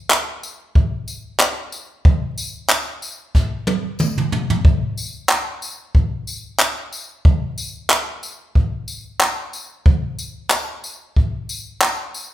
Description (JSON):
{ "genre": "pop", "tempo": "92 BPM", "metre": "4/4", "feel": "swing 55% on 16ths", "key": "none", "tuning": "none", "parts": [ { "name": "jazz brush drum kit", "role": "drums", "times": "0.1-12.3 s", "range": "handclaps, kick drum, snare drum, tambourine, toms", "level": "-17 LUFS", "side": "equal", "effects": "none" }, { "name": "tambourine", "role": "percussion", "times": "0.1-12.0 s", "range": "none", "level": "-34 LUFS", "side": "left 4 dB", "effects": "none" } ], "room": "moderate large studio reverb, RT60 1.1 s", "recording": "band playing live in one room", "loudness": "-17 LUFS", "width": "side -14 dB against mid", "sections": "0.0-12.3 A section", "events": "drum fill 3.3-4.6", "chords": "none", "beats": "0.10 0.75 1.40 | 2.05 2.70 3.35 4.00 | 4.65 5.30 5.95 6.60 | 7.25 7.90 8.55 9.21 | 9.86 10.51 11.16 11.82" }